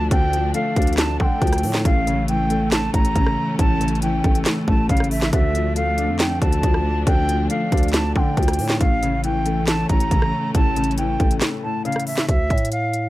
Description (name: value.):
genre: hip hop, trap.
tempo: 138 BPM.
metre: 4/4.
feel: half-time.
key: D harmonic minor.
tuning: A4 = 440 Hz.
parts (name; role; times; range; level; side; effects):
silver concert flute; melody; 0.0-13.1 s; E5 to Bb5; -25 LUFS; right 1 dB; low-pass filter.
dark baby grand piano; accompaniment; 0.0-12.3 s; A2 to D4; -25 LUFS; left 4 dB; low-pass filter.
warm symphonic string section; sustained chords; 0.0-12.3 s; E3 to D4; -28 LUFS; right 1 dB; none.
growling 808-style bass; bass; 0.0-13.1 s; A1 to D3; -23 LUFS; equal; none.
trap drum kit; drums; 0.1-13.0 s; handclaps, hi-hat, kick drum, rim click, snare drum; -20 LUFS; equal; none.
room: light reverb.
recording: none.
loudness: -17 LUFS.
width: side -16 dB against mid.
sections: 0.0-12.3 A section.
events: break 11.4-12.3.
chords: 0.0 Dm; 1.9 A; 5.3 Dm; 8.8 A; 12.3 Dm.